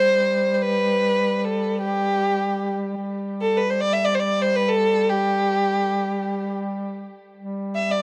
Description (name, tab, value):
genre	Turkish makam ensemble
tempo	free time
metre	none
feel	none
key	G makam rast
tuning	A4 = 444 Hz
part	rich violin	melody	0.0-8.0 s	G4 to E5	-23 LUFS	equal	tape echo
part	warm duduk	drone	0.0-8.0 s	G3	-28 LUFS	equal	none
room	light reverb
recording	dry, close 1970s-style studio recording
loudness	-22 LUFS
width	mono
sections	0.0-7.4 A section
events	none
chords	none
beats	free time